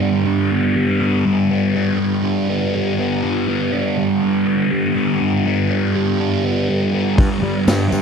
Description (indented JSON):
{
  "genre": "psychedelic rock",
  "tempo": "122 BPM",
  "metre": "4/4",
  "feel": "straight",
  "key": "G major",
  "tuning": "A4 = 440 Hz",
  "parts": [
    { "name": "thick fuzz guitar", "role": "riff", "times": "0.0-8.0 s", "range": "G2 to D4", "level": "-16 LUFS", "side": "equal", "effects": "distortion, phaser" },
    { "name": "fuzz fingered electric bass", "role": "bass", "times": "7.2-8.0 s", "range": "G2 to G3", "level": "-20 LUFS", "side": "left 1 dB", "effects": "overdrive" },
    { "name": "vintage drum kit", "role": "drums", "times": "7.2-7.8 s", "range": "hi-hat, kick drum, snare drum", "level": "-16 LUFS", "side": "equal", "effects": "none" },
    { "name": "tambourine", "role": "percussion", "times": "7.7-8.0 s", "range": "none", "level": "-34 LUFS", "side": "left 15 dB", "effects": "none" }
  ],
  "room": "small room ambience",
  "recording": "dry, close 1970s-style studio recording",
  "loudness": "-16 LUFS",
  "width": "side -6 dB against mid",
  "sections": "0.0-8.0 A section",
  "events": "none",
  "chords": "0.0 G",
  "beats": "0.27 0.76 | 1.26 1.75 2.25 2.74 | 3.23 3.73 4.22 4.71 | 5.21 5.70 6.20 6.69 | 7.18 7.68"
}